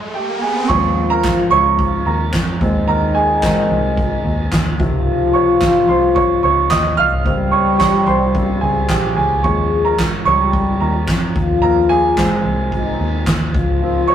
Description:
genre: piano-driven pop.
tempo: 110 BPM.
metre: 4/4.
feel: straight.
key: Ab major.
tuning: A4 = 439 Hz.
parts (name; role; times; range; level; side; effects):
warm concert grand piano; accompaniment; 0.0-14.1 s; C3 to F6; -17 LUFS; right 4 dB; none.
riser; sound effects; 0.0-0.7 s; none; -23 LUFS; right 2 dB; none.
mellow French horn section; second line; 0.7-14.1 s; Eb3 to Ab4; -18 LUFS; left 3 dB; none.
vintage muted picked electric bass; bass; 0.7-14.1 s; Bb1 to F2; -21 LUFS; left 1 dB; none.
soft-mallet drum kit; drums; 0.7-14.1 s; crash cymbal, handclaps, kick drum, ride cymbal, snare drum, toms; -20 LUFS; right 1 dB; none.
room: moderate small room ambience, RT60 0.5 s.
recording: rough rehearsal-room recording, tube saturation.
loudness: -13 LUFS.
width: side -9 dB against mid.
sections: 0.7-14.1 A section.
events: riser 0.0-0.7; stop 0.0-0.7; grand piano solo 0.7-14.1.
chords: 0.0 Bbm; 0.7 Eb7sus4; 2.6 Abadd9/Eb; 4.8 Dbmaj7; 7.3 Bbmadd9; 9.4 Eb7sus4; 11.4 Abadd9/Eb; 13.5 Dbmaj7.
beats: 0.15 | 0.69 1.24 1.79 2.34 | 2.88 3.43 3.98 4.52 | 5.07 5.62 6.16 6.71 | 7.26 7.80 8.35 8.90 | 9.45 9.99 10.54 11.09 | 11.63 12.18 12.73 13.27 | 13.82.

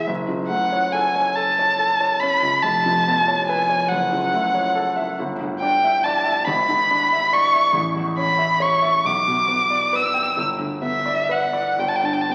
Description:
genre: classical, romantic duo for violin and grand piano.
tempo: 46 BPM (dotted quarters).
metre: 6/8.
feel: uneven beats, rubato.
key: unclear.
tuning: A4 = 440 Hz.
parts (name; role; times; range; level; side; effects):
warm violin; melody; 0.0-12.3 s; E5 to E6; -21 LUFS; equal; none.
clear baby grand piano; accompaniment; 0.0-12.3 s; E#1 to G5; -27 LUFS; equal; none.
room: wet scoring stage reverb, RT60 2.0 s.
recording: very old 78 rpm record, vinyl crackle.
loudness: -20 LUFS.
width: mono.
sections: 0.0-12.3 A section.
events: none.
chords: 0.1 F#m; 2.6 C#7/E#; 3.9 F#m7; 5.2 Em7/G; 6.5 E7/G#; 7.7 A; 9.1 G/B; 10.4 G; 11.8 N.C..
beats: | 0.06 1.37 | 2.63 3.90 | 5.17 6.47 | 7.75 9.06 | 10.39 11.79.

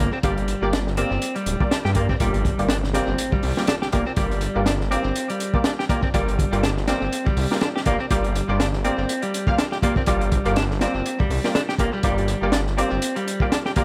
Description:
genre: breakbeat, breaks.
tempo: 122 BPM.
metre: 4/4.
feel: swing 57% on 16ths.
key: G minor.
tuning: A4 = 440 Hz.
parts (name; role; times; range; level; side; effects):
clean electric guitar; riff; 0.0-13.8 s; G3 to G4; -28 LUFS; equal; tape echo.
detuned saw bass; bass; 0.0-13.0 s; D1 to G2; -27 LUFS; equal; none.
orchestra-hit-like synth stab; stabs; 0.2-13.8 s; Bb3 to F5; -29 LUFS; equal; built-in reverb, tape echo.
crunchy breakbeat drum kit; drums; 0.2-13.8 s; hi-hat, kick drum, snare drum; -26 LUFS; equal; tape echo.
swell and impact; sound effects; 1.6-4.2 s; none; -38 LUFS; equal; none.
room: light reverb, studio ambience.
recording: echo-heavy mix.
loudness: -22 LUFS.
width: mono.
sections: 0.0-2.2 A section; 2.2-13.8 B section.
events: drop 2.2-13.8; impact 2.2-4.2.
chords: 0.0 Gm7.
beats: | 0.24 0.73 1.22 1.71 | 2.21 2.70 3.19 3.68 | 4.17 4.66 5.16 5.65 | 6.14 6.63 7.12 7.62 | 8.11 8.60 9.09 9.58 | 10.07 10.57 11.06 11.55 | 12.04 12.53 13.03 13.52.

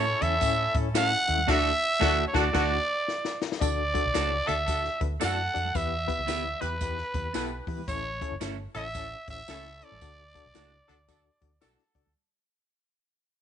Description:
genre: uptempo 1960s-style soul.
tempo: 113 BPM.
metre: 4/4.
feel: swing 62% on 8ths.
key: D major.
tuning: A4 = 440 Hz.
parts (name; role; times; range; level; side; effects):
growling trumpet; melody; 0.0-11.6 s; B4 to F#5; -28 LUFS; right 1 dB; none.
warm horn section; second line; 0.0-12.1 s; C#4 to B4; -35 LUFS; equal; none.
barky reed electric piano; accompaniment; 0.0-12.1 s; A2 to F#5; -35 LUFS; left 14 dB; overdrive, fast tremolo.
clean electric guitar; stabs; 0.0-11.8 s; A3 to B4; -32 LUFS; right 15 dB; vibrato effect.
vintage muted fingered electric bass; bass; 0.0-12.1 s; F#1 to E3; -33 LUFS; right 1 dB; none.
compact cocktail drum kit; drums; 0.2-12.0 s; crash cymbal, hi-hat, kick drum, snare drum; -32 LUFS; left 2 dB; none.
congas; percussion; 0.2-12.1 s; none; -45 LUFS; right 12 dB; none.
tambourine; percussion; 0.4-11.8 s; none; -41 LUFS; right 18 dB; none.
room: studio reverb.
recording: 1960s-style stereo with parts hard left and right, nothing above 10.4 kHz.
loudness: -25 LUFS.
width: side -9 dB against mid.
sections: 0.0-3.6 A section; 3.6-12.2 B section.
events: band accent 1.5-3.6; drum fill 3.1-3.6; fade-out 3.6-12.2.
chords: 0.0 A; 1.5 D; 5.7 Em; 7.9 A; 10.0 D.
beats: 0.42 0.95 | 1.49 2.02 2.55 3.08 | 3.61 4.15 4.68 5.21 | 5.74 6.28 6.81 7.34 | 7.88 8.41 8.94 9.48 | 10.01 10.55 11.08 11.62.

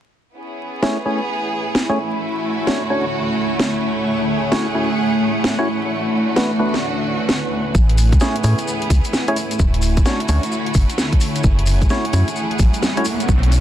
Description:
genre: UK garage, two-step garage.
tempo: 130 BPM.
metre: 4/4.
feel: swing 63% on 16ths.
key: A major.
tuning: A4 = 439 Hz.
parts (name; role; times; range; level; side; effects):
rich studio violin section; sustained chords; 0.4-13.6 s; A3 to G#4; -25 LUFS; equal; vintage 12-bit sampler grit, sidechain pumping.
granular cloud pad; texture; 1.4-13.6 s; D3 to G#5; -22 LUFS; equal; built-in reverb, sidechain pumping.
percussive organ stab; stabs; 0.8-13.1 s; A3 to C#5; -22 LUFS; equal; chorus, vintage 12-bit sampler grit, ping-pong delay.
garage drum kit; drums; 0.8-13.6 s; hi-hat, snare drum; -22 LUFS; equal; none.
organ-like FM bass; bass; 7.7-13.6 s; D1 to A2; -15 LUFS; equal; none.
electronic kick drum; drums; 7.7-13.4 s; none; -16 LUFS; equal; none.
maracas; percussion; 7.8-13.6 s; none; -31 LUFS; left 3 dB; none.
riser; sound effects; 12.4-13.6 s; none; -27 LUFS; right 2 dB; none.
room: moderate studio reverb, RT60 0.6 s.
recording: dense, heavily limited modern master, vinyl crackle.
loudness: -16 LUFS.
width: side -11 dB against mid.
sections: 0.4-13.6 A section.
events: filter sweep on synth stab 0.4-13.6; riser 12.4-13.6.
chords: 0.4 Amaj7; 2.2 Dmaj7; 4.1 F#m7; 5.9 Bm7; 7.7 Amaj7; 9.6 Dmaj7; 11.4 F#m7.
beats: | 0.36 0.83 1.29 1.75 | 2.21 2.67 3.13 3.60 | 4.06 4.52 4.98 5.44 | 5.90 6.37 6.83 7.29 | 7.75 8.21 8.67 9.13 | 9.60 10.06 10.52 10.98 | 11.44 11.90 12.37 12.83 | 13.29.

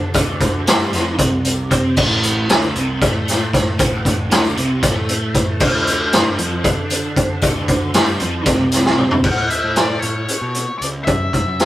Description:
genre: psychedelic rock.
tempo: 231 BPM (eighths).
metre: 7/8.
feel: straight.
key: unclear.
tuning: A4 = 440 Hz.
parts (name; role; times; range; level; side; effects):
overdriven electric guitar; riff; 0.0-9.2 s; A2 to D4; -22 LUFS; right 1 dB; rotary speaker.
fuzz picked electric bass; bass; 0.0-11.7 s; A1 to D3; -24 LUFS; equal; overdrive.
raw garage drum kit; drums; 0.1-11.7 s; crash cymbal, hi-hat, kick drum, snare drum, toms; -16 LUFS; equal; none.
tambourine; percussion; 0.1-9.2 s; none; -34 LUFS; left 7 dB; none.
octave-fuzz lead guitar; melody; 9.3-11.7 s; C#5 to F#5; -23 LUFS; left 3 dB; wah, distortion.
room: light reverb.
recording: rough rehearsal-room recording.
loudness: -14 LUFS.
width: side -14 dB against mid.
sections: 0.0-9.2 A section; 9.2-11.7 B section.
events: drum fill 8.9-9.2.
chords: 0.0 Csus24; 2.0 Amadd11; 5.6 Csus24; 9.2 Asus2; 11.1 F#7(no3).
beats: | 0.14 0.41 0.67 0.93 1.19 1.45 1.71 | 1.97 2.23 2.49 2.75 3.01 3.27 3.53 | 3.79 4.05 4.31 4.57 4.83 5.09 5.35 | 5.61 5.87 6.13 6.39 6.65 6.91 7.17 | 7.43 7.69 7.95 8.21 8.47 8.73 8.99 | 9.25 9.51 9.77 10.03 10.29 10.55 10.81 | 11.07 11.34 11.60.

